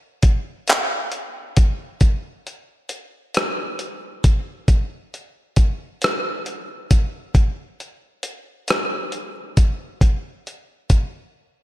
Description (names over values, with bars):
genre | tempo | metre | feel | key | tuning
R&B | 45 BPM (dotted quarters) | 6/8 | straight | none | none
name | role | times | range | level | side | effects
dusty soul sampler-style drum kit | drums | 0.2-11.1 s | handclaps, hi-hat, kick drum, rim click | -17 LUFS | equal | none
room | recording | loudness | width
light reverb | none | -18 LUFS | side -15 dB against mid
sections
0.0-2.0 A section; 2.0-11.6 B section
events
break 11.3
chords
none